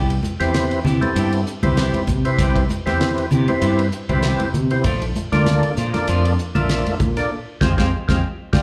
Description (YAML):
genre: electric jazz fusion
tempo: 98 BPM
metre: 4/4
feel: swing 55% on 16ths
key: C major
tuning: A4 = 440 Hz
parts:
  - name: clean electric guitar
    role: stabs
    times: 0.0-8.6 s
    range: E3 to G4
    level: -30 LUFS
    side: equal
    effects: subtle chorus, slapback echo
  - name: fretless electric bass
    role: bass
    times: 0.0-8.6 s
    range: G1 to C3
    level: -22 LUFS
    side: equal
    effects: none
  - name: damped 70s drum kit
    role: drums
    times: 0.1-8.6 s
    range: hi-hat, kick drum, ride cymbal, snare drum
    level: -28 LUFS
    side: equal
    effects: none
  - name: congas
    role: percussion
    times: 0.2-8.6 s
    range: none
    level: -27 LUFS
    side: equal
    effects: slapback echo
  - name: percussive tonewheel organ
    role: accompaniment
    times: 0.4-8.6 s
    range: Bb3 to E5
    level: -25 LUFS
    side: equal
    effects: slow rotary speaker, overdrive, chorus vibrato, slapback echo
room: light reverb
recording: live gig heard through the venue's PA, club reverb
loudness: -19 LUFS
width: mono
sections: 0.0-8.6 A section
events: band accent 7.3-8.6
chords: 0.0 Cmaj7; 4.8 Bbmaj7; 7.3 Fmadd9